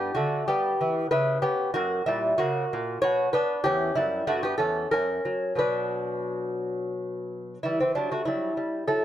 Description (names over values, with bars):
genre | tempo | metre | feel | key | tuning
classical, baroque-style dance for lute | 87-96 BPM | 3/4 | rubato | B minor | A4 = 436 Hz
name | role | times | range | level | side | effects
lute | solo | 0.0-9.0 s | E2 to C#5 | -24 LUFS | equal | none
room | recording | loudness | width
light reverb | close, detailed microphones | -24 LUFS | side -11 dB against mid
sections
0.0-7.6 A section; 7.6-9.0 A section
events
none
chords
0.0 G; 1.1 C#m7b5; 1.8 F#; 3.0 Bm; 3.6 C#dim/E; 4.9 F#; 5.6 Bm; 7.6 Em